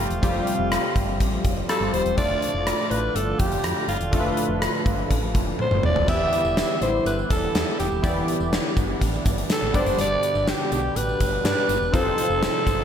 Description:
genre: 1980s-style pop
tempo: 123 BPM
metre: 4/4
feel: straight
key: unclear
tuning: A4 = 438 Hz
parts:
  - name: raspy alto saxophone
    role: melody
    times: 0.0-12.8 s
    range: F4 to E5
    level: -25 LUFS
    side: equal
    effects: slapback echo, shimmer reverb
  - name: warm analog keys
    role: accompaniment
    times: 0.0-12.8 s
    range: G2 to D5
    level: -28 LUFS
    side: left 2 dB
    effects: chorus, slapback echo, shimmer reverb
  - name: chorused pulse-width pad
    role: sustained chords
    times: 0.0-12.8 s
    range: A2 to G4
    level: -32 LUFS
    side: right 2 dB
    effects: shimmer reverb
  - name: solid FM bass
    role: bass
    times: 0.0-12.8 s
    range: D#1 to G2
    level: -28 LUFS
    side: equal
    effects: none
  - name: gated 80s drum kit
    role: drums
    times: 0.1-12.8 s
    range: crash cymbal, hi-hat, kick drum, rim click, snare drum, toms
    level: -24 LUFS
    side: equal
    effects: none
  - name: tambourine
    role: percussion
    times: 6.1-12.8 s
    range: none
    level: -43 LUFS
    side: right 5 dB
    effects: none
room: moderate scoring stage reverb, RT60 1.7 s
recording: big arena sound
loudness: -20 LUFS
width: side -8 dB against mid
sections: 0.0-12.8 A section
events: drum fill 5.6-6.1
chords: 0.0 Fadd9; 2.2 Dm; 6.1 Em7; 9.7 G; 11.9 F7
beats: | 0.23 0.72 1.21 1.69 | 2.18 2.67 3.16 3.64 | 4.13 4.62 5.11 5.59 | 6.08 6.57 7.06 7.55 | 8.03 8.52 9.01 9.50 | 9.99 10.47 10.96 11.45 | 11.94 12.43

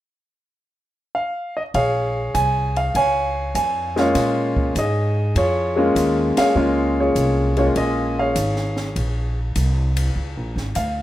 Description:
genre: jazz piano trio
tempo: 100 BPM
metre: 4/4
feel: swing 69% on 8ths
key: Bb minor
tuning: A4 = 440 Hz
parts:
  - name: clear concert grand piano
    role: melody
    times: 1.1-11.0 s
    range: Ab3 to Ab5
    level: -19 LUFS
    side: equal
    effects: plate reverb
  - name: upright bass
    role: bass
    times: 1.7-11.0 s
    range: Ab1 to Bb2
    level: -22 LUFS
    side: equal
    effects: none
  - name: open jazz drum kit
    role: drums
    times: 1.7-11.0 s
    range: hi-hat, kick drum, ride cymbal, snare drum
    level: -30 LUFS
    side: equal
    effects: none
room: wet studio ambience, RT60 0.5 s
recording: rough home demo mix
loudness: -18 LUFS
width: side -14 dB against mid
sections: 0.0-1.8 A section; 1.8-11.0 B section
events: band accent 6.3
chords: 0.0 N.C.; 1.8 Bbm7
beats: 0.55 1.15 | 1.75 2.35 2.96 3.56 | 4.16 4.76 5.36 5.96 | 6.56 7.16 7.76 8.37 | 8.96 9.56 10.16 10.76

